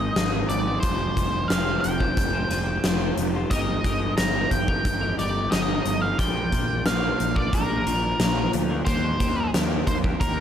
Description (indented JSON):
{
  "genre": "quiet-loud alternative rock",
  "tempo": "90 BPM",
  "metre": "4/4",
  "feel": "straight",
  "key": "unclear",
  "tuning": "A4 = 440 Hz",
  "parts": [
    { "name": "octave-fuzz lead guitar", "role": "melody", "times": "0.0-10.4 s", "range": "Bb4 to Bb5", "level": "-27 LUFS", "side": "equal", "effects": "distortion, slapback echo" },
    { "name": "twelve-string electric guitar", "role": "arpeggios", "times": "0.0-10.4 s", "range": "Ab2 to C5", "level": "-30 LUFS", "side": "left 4 dB", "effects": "phaser" },
    { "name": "fuzz picked electric bass", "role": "bass", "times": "0.0-10.4 s", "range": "F1 to Eb2", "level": "-28 LUFS", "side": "equal", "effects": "overdrive" },
    { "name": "huge arena drum kit", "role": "drums", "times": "0.2-10.4 s", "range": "hi-hat, kick drum, snare drum", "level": "-24 LUFS", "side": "equal", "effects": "none" }
  ],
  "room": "light reverb, small room ambience",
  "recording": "none",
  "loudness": "-21 LUFS",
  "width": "side -9 dB against mid",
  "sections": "0.0-10.4 A section",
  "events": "none",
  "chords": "0.0 Ab; 0.8 Fmadd9; 3.5 Eb/G; 6.2 Bb; 8.9 Eb",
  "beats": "0.17 | 0.84 1.51 2.18 2.85 | 3.52 4.19 4.86 5.53 | 6.19 6.86 7.53 8.20 | 8.87 9.54 10.21"
}